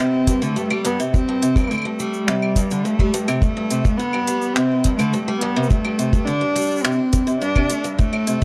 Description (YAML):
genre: folktronica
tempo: 105 BPM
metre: 4/4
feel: straight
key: unclear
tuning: A4 = 435 Hz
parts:
  - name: clear cello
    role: melody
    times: 0.0-8.4 s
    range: G3 to D4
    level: -23 LUFS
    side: equal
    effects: none
  - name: picked acoustic archtop guitar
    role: arpeggios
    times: 0.0-8.4 s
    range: G2 to A3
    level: -26 LUFS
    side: equal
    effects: vintage 12-bit sampler grit
  - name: kick drum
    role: drums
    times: 0.3-8.4 s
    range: none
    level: -20 LUFS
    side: equal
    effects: none
  - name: organic electronic drum kit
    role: drums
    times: 0.3-8.4 s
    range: cabasa, claves, finger snaps, hi-hat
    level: -28 LUFS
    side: equal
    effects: none
room: light reverb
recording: dark, warm production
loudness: -20 LUFS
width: mono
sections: 0.0-8.4 A section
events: none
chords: 0.0 D7sus4 (rootless)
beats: 0.00 0.57 | 1.14 1.71 2.28 2.85 | 3.42 4.00 4.57 5.14 | 5.71 6.28 6.85 7.42 | 8.00